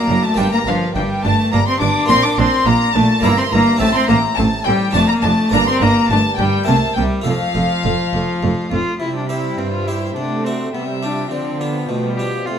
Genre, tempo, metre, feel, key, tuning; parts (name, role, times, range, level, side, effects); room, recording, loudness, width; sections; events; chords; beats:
classical, baroque-style concerto movement with solo episodes; 104 BPM; 3/4; straight; F major, C major from 9.0 s; A4 = 440 Hz
rich cello; melody; 0.0-12.6 s; F3 to G4; -19 LUFS; left 1 dB
warm chamber violin section; melody; 0.0-12.6 s; E5 to D6; -23 LUFS; left 4 dB
rich chamber violin section; second line; 0.0-12.6 s; C5 to D6; -22 LUFS; left 1 dB
harpsichord; accompaniment; 0.0-12.6 s; F2 to E5; -26 LUFS; right 1 dB
warm chamber viola section; accompaniment; 0.1-12.6 s; F3 to E4; -26 LUFS; right 2 dB
rich chamber double bass section; bass; 0.1-8.8 s; F1 to C2; -22 LUFS; right 3 dB
warm chamber cello section; bass; 0.1-12.6 s; F2 to D3; -23 LUFS; right 3 dB
moderate recital hall reverb, RT60 1.5 s; close, detailed microphones; -14 LUFS; side -8 dB against mid
0.0-9.0 A section; 9.0-12.6 B section
0.4 Gm; 2.1 Bb; 3.2 Edim/G; 3.8 Am; 4.9 Dm/F; 5.5 Gm; 6.7 C7; 7.3 F; 9.0 C; 10.2 D7/C; 10.7 G7/C
| 0.38 0.95 1.52 | 2.09 2.66 3.23 | 3.80 4.37 4.95 | 5.52 6.10 6.67 | 7.26 7.85 8.43 | 9.01 9.59 10.16 | 10.74 11.31 11.89 | 12.46